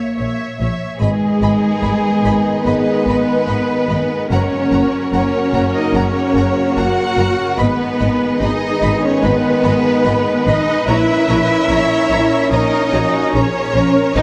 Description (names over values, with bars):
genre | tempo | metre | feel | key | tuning
cinematic | 73 BPM | 4/4 | straight | G# minor | A4 = 440 Hz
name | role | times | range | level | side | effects
warm symphonic violin section | melody | 0.0-14.2 s | G#4 to F#5 | -24 LUFS | equal | none
warm symphonic violin section | second line | 0.0-14.2 s | D#4 to B5 | -28 LUFS | equal | none
rich symphonic viola section | accompaniment | 0.0-14.2 s | F#4 to C#5 | -27 LUFS | equal | none
mellow French horn section | sustained chords | 0.0-14.2 s | A#3 to D#5 | -27 LUFS | equal | none
clear symphonic double bass section | bass | 0.2-14.2 s | F#1 to A#1 | -23 LUFS | equal | none
rich studio cello section | bass | 0.2-14.2 s | A#2 to F#4 | -20 LUFS | equal | none
bright trombone section | sustained chords | 1.0-14.2 s | A#2 to C#4 | -26 LUFS | equal | none
rich studio string section | sustained chords | 1.0-14.2 s | G#3 to A#5 | -28 LUFS | equal | none
room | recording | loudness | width
moderate concert hall reverb, RT60 2.1 s | dark, warm production | -16 LUFS | mono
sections
0.0-1.0 A section; 1.0-14.2 A section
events
none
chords
0.0 A#dim; 1.0 G#m; 4.3 F#; 7.6 G#m; 10.9 A#dim